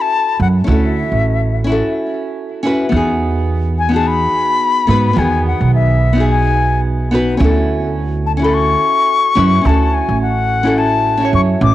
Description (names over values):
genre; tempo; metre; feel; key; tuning
sunset chillout; 107 BPM; 4/4; swing 57% on 16ths; E major; A4 = 440 Hz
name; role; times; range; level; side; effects
concert flute; melody; 0.0-11.7 s; E5 to D6; -16 LUFS; left 5 dB; cassette tape, analog delay
nylon-string guitar; accompaniment; 0.0-11.7 s; D#3 to C#5; -17 LUFS; moving between left 2 dB and right 5 dB; auto-pan, cassette tape, tape echo
upright bass; bass; 0.4-11.7 s; A1 to G#2; -15 LUFS; right 2 dB; tube saturation
room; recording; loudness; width
light reverb; home recording on cassette; -12 LUFS; side -14 dB against mid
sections
0.0-2.9 A section; 2.9-11.7 B section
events
break 1.8-2.9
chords
0.0 Dmaj9 (rootless); 2.9 Emaj9; 7.4 Dmaj9